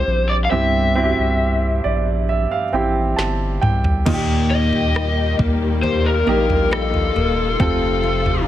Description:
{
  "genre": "pop ballad",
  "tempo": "68 BPM",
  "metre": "4/4",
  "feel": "straight",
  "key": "unclear",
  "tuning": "A4 = 441 Hz",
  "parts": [
    { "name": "lead guitar through a small cranked amp", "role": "melody", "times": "0.0-8.4 s", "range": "A4 to F5", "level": "-21 LUFS", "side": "left 3 dB", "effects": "overdrive" },
    { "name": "warm grand piano", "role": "accompaniment", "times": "0.0-8.5 s", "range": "G2 to A5", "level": "-22 LUFS", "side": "right 3 dB", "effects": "none" },
    { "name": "saturated sub bass", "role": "bass", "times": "0.0-8.5 s", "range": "Eb1 to Eb2", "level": "-21 LUFS", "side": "equal", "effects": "none" },
    { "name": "smooth R&B drum kit", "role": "drums", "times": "3.2-8.5 s", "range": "crash cymbal, kick drum, rim click, snare drum, toms", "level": "-22 LUFS", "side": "equal", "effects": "none" },
    { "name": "warm studio string section", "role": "sustained chords", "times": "4.1-8.5 s", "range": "C3 to G4", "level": "-25 LUFS", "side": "left 2 dB", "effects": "none" },
    { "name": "fingerpicked steel-string acoustic guitar", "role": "arpeggios", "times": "4.1-8.5 s", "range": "F2 to A4", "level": "-26 LUFS", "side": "left 7 dB", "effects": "none" }
  ],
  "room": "light reverb, studio reverb",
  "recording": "none",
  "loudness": "-16 LUFS",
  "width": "side -12 dB against mid",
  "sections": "0.0-4.1 A section; 4.1-8.5 B section",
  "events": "grand piano fill 1.4-4.1; drum fill 3.2-4.1",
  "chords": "0.0 C; 4.1 Eb; 7.6 F",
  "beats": "| 0.51 1.40 2.28 3.17 | 4.07 4.95 5.83 6.71 | 7.60 8.48"
}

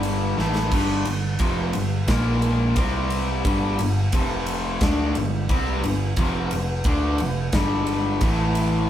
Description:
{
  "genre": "hard rock",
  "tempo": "88 BPM",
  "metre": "4/4",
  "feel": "straight",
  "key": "unclear",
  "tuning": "A4 = 440 Hz",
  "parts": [
    { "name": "cranked stack guitar", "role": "riff", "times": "0.0-8.9 s", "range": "F2 to D4", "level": "-25 LUFS", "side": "left 2 dB", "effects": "overdrive" },
    { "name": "sludgy distorted guitar", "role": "riff", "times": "0.0-8.9 s", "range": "F2 to D4", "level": "-28 LUFS", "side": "right 2 dB", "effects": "overdrive" },
    { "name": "picked electric bass", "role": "bass", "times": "0.0-8.9 s", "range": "F1 to D2", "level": "-26 LUFS", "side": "equal", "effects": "none" },
    { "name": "huge arena drum kit", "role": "drums", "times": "0.0-8.7 s", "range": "crash cymbal, kick drum, ride cymbal, snare drum", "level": "-25 LUFS", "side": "equal", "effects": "none" }
  ],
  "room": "wet small room reverb, RT60 0.6 s",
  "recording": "band playing live in one room",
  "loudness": "-20 LUFS",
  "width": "side -11 dB against mid",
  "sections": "0.0-8.9 A section",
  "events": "drum fill 0.4-0.7",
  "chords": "0.4 A5; 0.7 G5; 2.1 Bb5; 2.8 C5; 3.4 G5; 4.1 F5; 4.8 G5; 6.2 F5; 7.5 G5; 8.2 A5",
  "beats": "0.03 | 0.71 1.40 2.08 2.76 | 3.44 4.13 4.81 5.49 | 6.18 6.86 7.54 8.23"
}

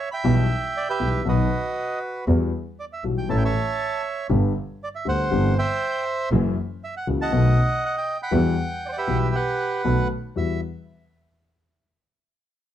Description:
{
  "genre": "tango",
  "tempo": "119 BPM",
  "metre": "4/4",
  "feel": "rubato",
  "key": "E minor",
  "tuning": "A4 = 442 Hz",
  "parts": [
    { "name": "bandoneon", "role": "melody", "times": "0.0-10.6 s", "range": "F#4 to B5", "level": "-25 LUFS", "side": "right 3 dB", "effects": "none" },
    { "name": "dark concert grand piano", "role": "accompaniment", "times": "0.2-10.6 s", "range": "G1 to A4", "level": "-24 LUFS", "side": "left 4 dB", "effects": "none" },
    { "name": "warm double bass", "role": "bass", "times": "0.2-10.6 s", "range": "F#1 to E2", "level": "-23 LUFS", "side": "right 2 dB", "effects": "none" }
  ],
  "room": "moderate club reverb, RT60 0.7 s",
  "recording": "dark, warm production",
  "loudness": "-21 LUFS",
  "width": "side -11 dB against mid",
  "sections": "0.0-10.4 A section; 10.4-12.4 B section",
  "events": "none",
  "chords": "0.2 Em/B; 1.3 B; 2.3 Emadd9; 3.3 A; 4.3 G; 5.3 C/G; 6.3 F#7; 7.3 B7; 8.3 Emadd9; 9.8 B7; 10.4 Emadd9",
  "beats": "| 0.24 0.75 1.25 1.76 | 2.27 2.78 3.29 3.80 | 4.30 4.81 5.31 5.82 | 6.32 6.82 7.32 7.83 | 8.33 8.83 9.34 9.85 | 10.37"
}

